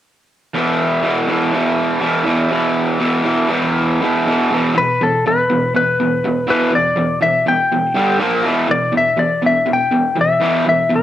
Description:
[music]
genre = rock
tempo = 122 BPM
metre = 4/4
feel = straight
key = E minor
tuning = A4 = 441 Hz
[part]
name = raw garage guitar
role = riff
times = 0.5-11.0 s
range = E2 to A#3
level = -16 LUFS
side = right 1 dB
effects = overdrive, cassette tape
[part]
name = clean lap steel guitar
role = melody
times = 4.8-11.0 s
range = A4 to G5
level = -15 LUFS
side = left 3 dB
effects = cassette tape
[sound]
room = light reverb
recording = home recording on cassette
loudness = -14 LUFS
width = side -12 dB against mid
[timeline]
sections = 0.6-4.5 A section; 4.5-11.0 B section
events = none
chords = 0.6 E5; 8.0 G5; 8.2 A#5; 8.5 E5

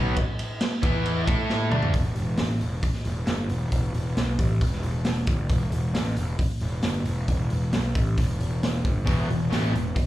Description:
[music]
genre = hard rock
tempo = 135 BPM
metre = 4/4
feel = straight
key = unclear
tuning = A4 = 440 Hz
[part]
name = distorted electric guitar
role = riff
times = 0.0-1.9, 9.0-10.0 s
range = E2 to A4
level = -27 LUFS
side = equal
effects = distortion, slapback echo
[part]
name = fuzz picked electric bass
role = bass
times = 0.0-10.0 s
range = E1 to A2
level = -26 LUFS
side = equal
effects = overdrive
[part]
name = raw garage drum kit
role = drums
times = 0.2-10.1 s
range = hi-hat, kick drum, ride cymbal, snare drum, toms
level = -26 LUFS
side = equal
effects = none
[sound]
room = little or no reverb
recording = live gig heard through the venue's PA, club reverb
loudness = -23 LUFS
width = side -15 dB against mid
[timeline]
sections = 0.0-1.9 A section; 1.9-10.1 B section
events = drum fill 1.5-1.9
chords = 0.0 N.C.; 0.8 E5; 1.3 A5; 1.7 D5; 1.9 E5

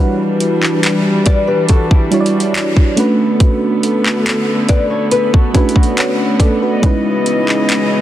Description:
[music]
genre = contemporary R&B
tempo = 70 BPM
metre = 4/4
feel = straight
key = unclear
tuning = A4 = 440 Hz
[part]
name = mellow FM electric piano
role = accompaniment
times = 0.0-8.0 s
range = G3 to Gb5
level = -15 LUFS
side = right 1 dB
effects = chorus
[part]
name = dark chamber string section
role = sustained chords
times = 0.0-8.0 s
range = Db3 to Eb5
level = -19 LUFS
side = equal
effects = sidechain pumping
[part]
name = trap drum kit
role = drums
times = 0.4-7.9 s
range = handclaps, hi-hat, kick drum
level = -14 LUFS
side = equal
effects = vintage 12-bit sampler grit
[part]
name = nylon-string guitar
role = arpeggios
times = 1.3-6.8 s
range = D4 to D5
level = -19 LUFS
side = left 3 dB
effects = tape echo
[sound]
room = light reverb, small room ambience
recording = dense, heavily limited modern master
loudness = -11 LUFS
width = side -12 dB against mid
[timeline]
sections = 0.0-8.0 A section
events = none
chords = 0.0 Em9; 3.0 Bm9; 6.8 Dbm9

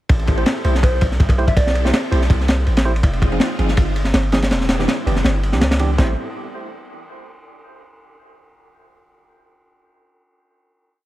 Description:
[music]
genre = drum and bass, jungle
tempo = 163 BPM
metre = 4/4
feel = swing 53% on 16ths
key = unclear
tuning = A4 = 440 Hz
[part]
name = soft string machine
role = sustained chords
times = 0.1-6.1 s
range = G3 to A4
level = -28 LUFS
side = left 1 dB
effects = ensemble chorus, vintage 12-bit sampler grit
[part]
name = long sustained 808-style bass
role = bass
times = 0.1-6.2 s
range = E1 to C#2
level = -19 LUFS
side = equal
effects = none
[part]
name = crunchy breakbeat drum kit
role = drums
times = 0.1-6.1 s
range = china cymbal, kick drum, ride cymbal, snare drum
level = -18 LUFS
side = equal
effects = none
[part]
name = tine electric piano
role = stabs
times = 0.4-6.1 s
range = E3 to C5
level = -27 LUFS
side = right 3 dB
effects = dub echo
[part]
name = soft struck synth lead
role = melody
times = 0.8-1.9 s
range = C5 to E5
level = -28 LUFS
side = right 1 dB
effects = chorus, dub echo
[sound]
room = small room ambience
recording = none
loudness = -15 LUFS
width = side -15 dB against mid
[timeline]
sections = 0.1-6.0 drop; 6.0-7.5 final chord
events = drop 0.1-6.0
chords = 0.1 Am7; 3.0 Fm7; 4.5 Em7; 6.0 Am7

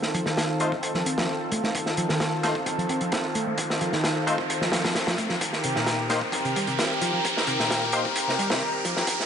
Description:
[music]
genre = breakbeat, breaks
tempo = 131 BPM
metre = 4/4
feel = straight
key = F mixolydian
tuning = A4 = 441 Hz
[part]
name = lush unison pad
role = sustained chords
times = 0.0-9.3 s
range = Eb3 to Bb4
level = -28 LUFS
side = equal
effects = chorus, sidechain pumping
[part]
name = crunchy breakbeat drum kit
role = drums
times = 0.0-9.3 s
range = hi-hat, kick drum, snare drum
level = -27 LUFS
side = equal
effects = high-pass filter on kick, high-pass filter on hats, high-pass filter on snare, high-pass filter on room
[part]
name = riser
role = sound effects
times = 1.4-9.3 s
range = none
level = -31 LUFS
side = equal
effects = none
[part]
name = picked electric bass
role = riff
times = 0.1-9.0 s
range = Bb2 to C4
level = -31 LUFS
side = equal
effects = low-pass filter
[part]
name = band-passed chord stab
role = stabs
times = 0.6-8.0 s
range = A3 to C5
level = -30 LUFS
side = left 2 dB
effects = chorus, cassette tape, dub echo
[sound]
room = moderate lush hall reverb, RT60 2.0 s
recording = vinyl crackle, high-pass filter, nothing above 11.0 kHz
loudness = -23 LUFS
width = side -8 dB against mid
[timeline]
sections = 0.0-9.3 A section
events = build-up 0.0-9.3; filter sweep on picked electric bass 0.0-9.3; filter sweep 0.0-9.3; riser 1.4-9.3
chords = 0.0 F7; 5.4 Cm7

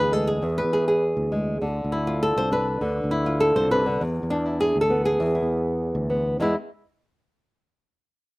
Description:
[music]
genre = flamenco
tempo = 201 BPM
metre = 4/4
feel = straight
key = E phrygian dominant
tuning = A4 = 440 Hz
[part]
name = flamenco guitar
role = melody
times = 0.0-6.5 s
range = E2 to C5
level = -22 LUFS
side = equal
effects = slapback echo
[part]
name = sustaining fretless electric bass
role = bass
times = 0.0-6.5 s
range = C2 to E2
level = -28 LUFS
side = equal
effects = none
[sound]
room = little or no reverb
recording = recorded outdoors, with no room sound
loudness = -21 LUFS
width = side -22 dB against mid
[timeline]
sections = 0.0-6.4 A section; 6.4-7.6 B section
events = none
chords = 0.0 E; 1.6 Dm; 4.0 E; 6.4 N.C.

